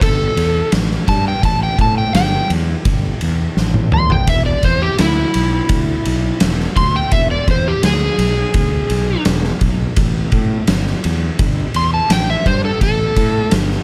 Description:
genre	blues rock power trio and southern rock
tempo	84 BPM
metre	4/4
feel	straight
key	unclear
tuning	A4 = 438 Hz
part	overdriven slide guitar	melody	0.0-13.5 s	E4 to C6	-21 LUFS	equal	tape echo
part	fuzz fingered electric bass	bass	0.0-13.8 s	E1 to A2	-20 LUFS	equal	overdrive
part	oversized low-tuned drum kit	drums	0.0-13.8 s	kick drum, ride cymbal, snare drum, toms	-20 LUFS	equal	none
room	studio reverb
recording	none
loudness	-16 LUFS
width	mono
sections	0.0-13.8 A section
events	electric slide guitar solo 0.0-13.8; drum fill 3.6-4.3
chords	0.0 A5; 4.3 E7; 10.0 A5

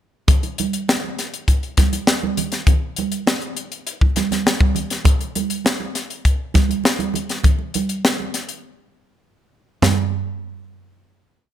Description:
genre	funk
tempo	101 BPM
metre	4/4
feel	straight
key	none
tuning	none
part	crisp fusion drum kit	drums	0.3-10.0 s	hi-hat, kick drum, snare drum, toms	-18 LUFS	left 1 dB	none
part	congas	percussion	0.3-10.1 s	none	-24 LUFS	right 7 dB	none
room	little or no reverb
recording	none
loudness	-17 LUFS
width	side -11 dB against mid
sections	0.3-9.8 breakdown; 9.8-11.5 final hit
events	break 8.6-9.8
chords	none

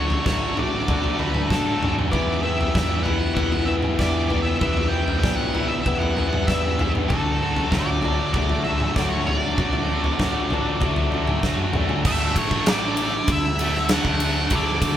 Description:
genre	quiet-loud alternative rock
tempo	97 BPM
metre	4/4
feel	straight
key	unclear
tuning	A4 = 439 Hz
part	octave-fuzz lead guitar	melody	0.0-15.0 s	A4 to G5	-28 LUFS	equal	distortion
part	fingerpicked swing-style acoustic guitar	arpeggios	0.0-12.1 s	D3 to F#4	-29 LUFS	left 6 dB	none
part	distorted electric guitar	riff	0.0-15.0 s	D3 to G4	-25 LUFS	right 1 dB	distortion
part	growling picked electric bass	bass	0.0-15.0 s	A1 to B2	-27 LUFS	right 1 dB	overdrive
part	huge arena drum kit	drums	0.1-15.0 s	crash cymbal, kick drum, ride cymbal, snare drum, toms	-24 LUFS	equal	none
room	moderate studio reverb, RT60 0.5 s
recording	band playing live in one room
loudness	-19 LUFS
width	side -11 dB against mid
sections	0.0-12.1 A section; 12.1-15.0 B section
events	none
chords	0.0 D; 2.1 Em; 7.1 D; 12.1 Dadd9

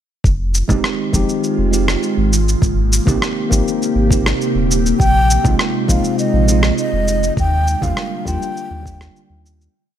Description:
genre	sunset chillout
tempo	101 BPM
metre	4/4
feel	straight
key	F dorian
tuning	A4 = 439 Hz
part	ethereal airy pad	sustained chords	1.0-9.7 s	C3 to G4	-22 LUFS	right 2 dB	ensemble chorus, built-in reverb, phaser, vintage 12-bit sampler grit
part	warm sub bass	bass	0.2-9.7 s	Eb1 to Eb2	-17 LUFS	equal	none
part	electronic kick drum	drums	0.2-9.1 s	none	-18 LUFS	equal	overdrive
part	electronic shaker and rim click	drums	0.3-9.7 s	none	-22 LUFS	equal	none
part	tine electric piano	accompaniment	0.7-9.7 s	G3 to G4	-20 LUFS	moving between left 6 dB and right 7 dB	auto-pan, ping-pong delay
part	congas	percussion	0.7-8.4 s	none	-25 LUFS	left 2 dB	none
part	breathy baroque flute	melody	5.0-9.4 s	Eb5 to G5	-20 LUFS	equal	ping-pong delay
room	light reverb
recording	none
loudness	-14 LUFS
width	side -10 dB against mid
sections	0.2-9.7 groove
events	fade-out 6.6-9.7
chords	0.2 Fm7; 2.3 Abmaj9; 5.0 Bb9sus4; 7.4 Ebmaj9

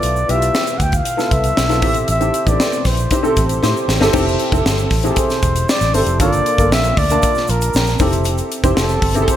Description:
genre	polished 1980s jazz-funk pop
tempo	117 BPM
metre	4/4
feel	straight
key	F major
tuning	A4 = 440 Hz
part	breathy flugelhorn	melody	0.0-9.4 s	A4 to G5	-20 LUFS	equal	none
part	warm baby grand piano	accompaniment	0.0-9.4 s	Bb3 to A5	-19 LUFS	left 1 dB	analog chorus
part	vintage muted fingered electric bass	bass	0.0-9.2 s	E1 to A2	-19 LUFS	equal	none
part	crisp fusion drum kit	drums	0.0-9.4 s	crash cymbal, hi-hat, kick drum, snare drum	-19 LUFS	equal	gated reverb
part	tube shaker	percussion	0.0-9.4 s	none	-33 LUFS	right 8 dB	none
room	moderate lush hall reverb, RT60 1.8 s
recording	bright 1980s-style digital production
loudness	-13 LUFS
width	side -11 dB against mid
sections	0.0-4.1 A section; 4.1-9.4 B section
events	drum fill 3.6-4.1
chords	0.0 G13; 1.8 Am7; 4.1 Fmaj7; 6.2 Gm7; 8.0 Fmaj7

